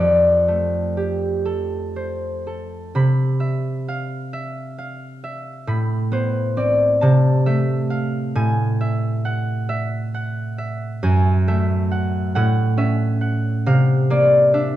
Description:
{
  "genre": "classical, solo harp piece",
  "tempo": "45 BPM (dotted quarters)",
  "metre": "6/8",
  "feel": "uneven beats, rubato",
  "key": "C major",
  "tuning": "A4 = 442 Hz",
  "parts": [
    { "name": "concert harp", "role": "solo", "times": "0.0-14.8 s", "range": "F2 to B5", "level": "-18 LUFS", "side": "equal", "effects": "none" }
  ],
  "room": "moderate recital hall reverb, RT60 1.3 s",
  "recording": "dark, warm production",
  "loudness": "-17 LUFS",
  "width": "side -13 dB against mid",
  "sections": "0.0-2.9 A section; 2.9-14.8 B section",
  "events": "none",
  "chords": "0.0 F69; 2.9 Cmaj7; 5.7 Amadd9; 7.0 C6; 8.4 A5; 11.0 F#m9; 12.3 A6; 13.7 C11"
}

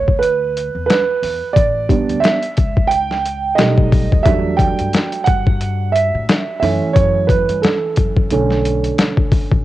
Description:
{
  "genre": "hip hop, jazz-hop",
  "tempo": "89 BPM",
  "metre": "4/4",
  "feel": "swing 58% on 16ths",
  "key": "B minor",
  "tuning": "A4 = 439 Hz",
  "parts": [
    { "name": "dark concert grand piano", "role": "accompaniment", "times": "0.0-9.6 s", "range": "D3 to G5", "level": "-17 LUFS", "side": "right 4 dB", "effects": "cassette tape" },
    { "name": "upright bass", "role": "bass", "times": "0.0-9.6 s", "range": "A1 to A2", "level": "-22 LUFS", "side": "left 2 dB", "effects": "tube saturation" },
    { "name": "boom bap sampler-style drum kit", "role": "drums", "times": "0.1-9.6 s", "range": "hi-hat, kick drum, snare drum", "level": "-15 LUFS", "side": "left 2 dB", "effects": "overdrive, vintage 12-bit sampler grit, cassette tape" }
  ],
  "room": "small room reverb",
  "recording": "home recording on cassette",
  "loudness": "-13 LUFS",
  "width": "side -14 dB against mid",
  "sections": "0.0-9.6 A section",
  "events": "grand piano solo 0.0-9.6",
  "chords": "0.0 Bmadd9; 1.6 A9sus4; 3.6 B7b13; 4.3 Em11; 6.6 F#m7; 8.3 Bm9"
}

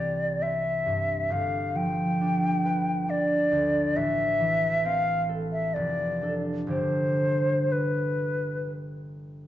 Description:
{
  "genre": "classical, romantic duo for flute and harp",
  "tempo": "60-69 BPM",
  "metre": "3/4",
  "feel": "rubato",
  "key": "unclear",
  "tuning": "A4 = 440 Hz",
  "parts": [
    { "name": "hollow concert flute", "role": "melody", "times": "0.0-8.7 s", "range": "B4 to G5", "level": "-26 LUFS", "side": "left 1 dB", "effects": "none" },
    { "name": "concert harp", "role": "accompaniment", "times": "0.0-9.5 s", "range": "F1 to B4", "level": "-28 LUFS", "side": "right 1 dB", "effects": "none" }
  ],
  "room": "wet recital hall reverb, RT60 1.3 s",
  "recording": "dark, warm production, nothing above 7.8 kHz",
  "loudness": "-24 LUFS",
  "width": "side -12 dB against mid",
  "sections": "0.0-9.5 A section",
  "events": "none",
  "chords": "0.0 C; 1.3 G7; 4.0 Am; 5.8 Dm/F; 6.7 G"
}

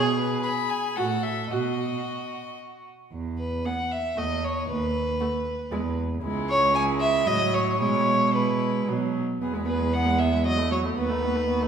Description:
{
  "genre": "quick classical-period movement for string quartet",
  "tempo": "115 BPM",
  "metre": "3/4",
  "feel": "straight",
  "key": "E major",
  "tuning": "A4 = 440 Hz",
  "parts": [
    { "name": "rich violin", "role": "second line", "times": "0.0-11.7 s", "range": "F#4 to G#5", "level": "-26 LUFS", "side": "equal", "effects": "none" },
    { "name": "rich viola", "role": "accompaniment", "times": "0.0-11.7 s", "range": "F#3 to G#4", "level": "-29 LUFS", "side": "right 2 dB", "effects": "none" },
    { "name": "rich cello", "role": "bass", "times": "0.0-11.7 s", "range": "C#2 to B2", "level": "-28 LUFS", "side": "right 3 dB", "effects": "none" },
    { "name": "warm violin", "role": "melody", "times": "0.2-11.7 s", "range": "D#4 to B5", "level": "-34 LUFS", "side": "left 6 dB", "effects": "none" }
  ],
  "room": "wet recital hall reverb, RT60 1.6 s",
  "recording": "recorded in a church or concert hall",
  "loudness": "-23 LUFS",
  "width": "side -7 dB against mid",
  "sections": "0.0-3.1 A section; 3.1-11.7 B section",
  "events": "none",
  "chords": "0.0 G#m/B; 1.0 F#m/A; 1.5 B; 3.1 E5; 4.2 F#7(no3)/E (rootless); 4.7 B/D#; 5.7 E5; 6.2 C#m; 7.3 F#m7/A; 7.8 E/B; 8.9 B; 9.4 E; 10.5 F#m7/E; 11.0 B7/D#"
}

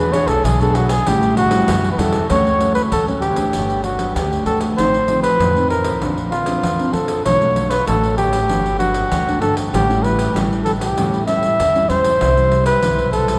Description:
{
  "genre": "samba and choro",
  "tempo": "97 BPM",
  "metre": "4/4",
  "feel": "straight",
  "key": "D major",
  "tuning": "A4 = 440 Hz",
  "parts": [
    { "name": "mellow flugelhorn", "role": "melody", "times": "0.0-13.4 s", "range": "F4 to E5", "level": "-20 LUFS", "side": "equal", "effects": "none" },
    { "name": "nylon-string guitar", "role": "accompaniment", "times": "0.0-13.4 s", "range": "F#2 to G#4", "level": "-25 LUFS", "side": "equal", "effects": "none" },
    { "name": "upright bass", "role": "bass", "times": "0.0-13.4 s", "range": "G1 to F#2", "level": "-24 LUFS", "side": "equal", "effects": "none" },
    { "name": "pandeiro", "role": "percussion", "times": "0.1-13.4 s", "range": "none", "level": "-27 LUFS", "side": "equal", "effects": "none" }
  ],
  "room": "wet cathedral reverb, RT60 6.9 s",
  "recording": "recorded in a church or concert hall",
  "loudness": "-17 LUFS",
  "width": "mono",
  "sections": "0.0-2.3 A section; 2.3-13.4 B section",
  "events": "flugelhorn solo 0.0-2.3",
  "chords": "0.0 E7; 1.1 A7; 2.3 Dmaj7; 3.5 Gmaj7; 4.8 F7/A; 6.0 Bbadd9; 7.3 Bm7; 8.5 Gmaj7; 9.7 A7; 12.2 Cmaj7"
}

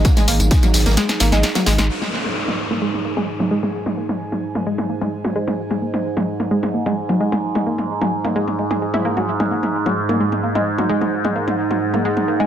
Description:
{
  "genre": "driving peak-time techno",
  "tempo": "130 BPM",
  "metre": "4/4",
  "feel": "straight",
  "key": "unclear",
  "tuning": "A4 = 440 Hz",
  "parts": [
    { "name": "saturated sub bass", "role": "bass", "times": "0.0-1.9 s", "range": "G#1", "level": "-17 LUFS", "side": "equal", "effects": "sidechain pumping, low-pass filter" },
    { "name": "deep reggae drum kit", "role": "drums", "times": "0.0-1.8 s", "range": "ride cymbal, snare drum", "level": "-30 LUFS", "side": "right 1 dB", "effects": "none" },
    { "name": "electronic kick drum", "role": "drums", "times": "0.0-0.6 s", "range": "none", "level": "-15 LUFS", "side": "equal", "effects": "none" },
    { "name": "punchy analog drum machine", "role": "drums", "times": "0.0-12.5 s", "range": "hi-hat, snare drum, tambourine, toms", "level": "-23 LUFS", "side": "left 1 dB", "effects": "low-pass filter on hats, low-pass filter on toms, low-pass filter on perc, low-pass filter on snare, low-pass filter on room, dub echo" },
    { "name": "warbly tape-like pad", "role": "texture", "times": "0.0-12.5 s", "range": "D#4 to G#5", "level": "-25 LUFS", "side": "right 4 dB", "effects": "chorus, built-in reverb, sidechain pumping" },
    { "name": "analog pluck", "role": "riff", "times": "0.2-12.5 s", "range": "F#3 to G#4", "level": "-22 LUFS", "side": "equal", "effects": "chorus, phaser, tube saturation, cassette tape, sidechain pumping, dub echo" },
    { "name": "overtone-sweeping drone", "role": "drone", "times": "2.3-12.5 s", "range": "G#2", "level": "-24 LUFS", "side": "right 1 dB", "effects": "chorus, built-in reverb, phaser, sidechain pumping" },
    { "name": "downlifter", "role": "sound effects", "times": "1.9-5.6 s", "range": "none", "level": "-27 LUFS", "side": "equal", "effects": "none" }
  ],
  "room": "light reverb, digital ambience",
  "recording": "echo-heavy mix",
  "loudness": "-17 LUFS",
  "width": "side -9 dB against mid",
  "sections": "0.0-1.9 A section; 1.9-12.5 B section",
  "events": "kick drops out 1.0-1.9; drum fill 1.0-1.9; filter sweep on drum 1.9-12.5; filter sweep on synth arpeggio sound 1.9-12.5",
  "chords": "0.0 G#5"
}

